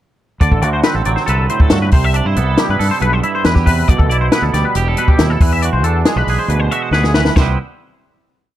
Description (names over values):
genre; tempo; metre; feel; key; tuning
math rock and midwest emo; 138 BPM; 4/4; straight; C lydian; A4 = 440 Hz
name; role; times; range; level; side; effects
twangy electric guitar; accompaniment; 0.4-7.6 s; G2 to B4; -20 LUFS; right 9 dB; none
twangy electric guitar; arpeggios; 0.4-7.6 s; G4 to E5; -19 LUFS; left 4 dB; analog chorus
growling fingered electric bass; bass; 0.4-7.6 s; E1 to G2; -16 LUFS; equal; overdrive
compact cocktail drum kit; drums; 0.4-7.5 s; crash cymbal, hi-hat, kick drum, snare drum; -14 LUFS; equal; none
room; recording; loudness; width
little or no reverb; dark, warm production; -12 LUFS; side -13 dB against mid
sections
0.4-7.4 A section; 7.4-8.6 final chord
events
drum fill 6.9-7.4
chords
0.4 D7; 1.9 Cmaj7; 3.9 G69/B; 5.4 E9; 7.4 Cmaj7